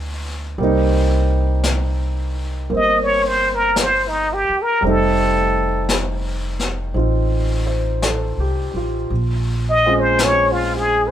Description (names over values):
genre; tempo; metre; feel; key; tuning
jazz ballad; 56 BPM; 4/4; swing 69% on 8ths; unclear; A4 = 439 Hz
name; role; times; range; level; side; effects
warm concert grand piano; accompaniment; 0.0-11.1 s; F3 to C5; -22 LUFS; right 2 dB; none
upright bass; bass; 0.0-11.1 s; F1 to D2; -21 LUFS; equal; none
jazz brush drum kit; drums; 0.6-11.1 s; brushed snare drum, hi-hat, snare drum; -26 LUFS; left 3 dB; none
trumpet with plunger mute; melody; 2.8-11.1 s; Eb4 to Eb5; -16 LUFS; equal; none
room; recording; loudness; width
moderate studio reverb, RT60 0.6 s; band playing live in one room; -16 LUFS; side -10 dB against mid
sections
0.0-11.1 A section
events
muted trumpet solo 0.0-11.1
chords
0.0 G7b13 (rootless); 0.6 Cm7; 4.8 F7; 9.1 Bbm9